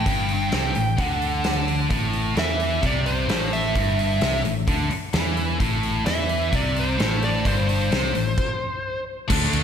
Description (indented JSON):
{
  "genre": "hard rock",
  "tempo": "130 BPM",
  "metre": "4/4",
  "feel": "straight",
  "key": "A minor",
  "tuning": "A4 = 440 Hz",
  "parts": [
    { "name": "smooth overdriven lead guitar", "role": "melody", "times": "0.0-9.0 s", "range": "C5 to G5", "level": "-27 LUFS", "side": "equal", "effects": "slapback echo" },
    { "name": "scooped high-gain guitar", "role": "riff", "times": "0.0-9.6 s", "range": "G2 to D4", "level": "-26 LUFS", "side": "left 6 dB", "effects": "distortion" },
    { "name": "scooped high-gain guitar", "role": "riff", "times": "0.0-9.6 s", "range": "G2 to D4", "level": "-28 LUFS", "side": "right 11 dB", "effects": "distortion, slapback echo" },
    { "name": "picked electric bass", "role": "bass", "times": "0.0-9.6 s", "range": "G1 to E2", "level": "-26 LUFS", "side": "right 1 dB", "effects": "none" },
    { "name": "huge arena drum kit", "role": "drums", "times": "0.1-9.6 s", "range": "crash cymbal, hi-hat, kick drum, ride cymbal, snare drum", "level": "-26 LUFS", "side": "equal", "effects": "none" }
  ],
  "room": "moderate lush hall reverb, RT60 1.7 s",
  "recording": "big arena sound",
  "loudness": "-20 LUFS",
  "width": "side -8 dB against mid",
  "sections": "0.0-9.3 A section",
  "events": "stop 8.4-9.3",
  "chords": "0.0 Am"
}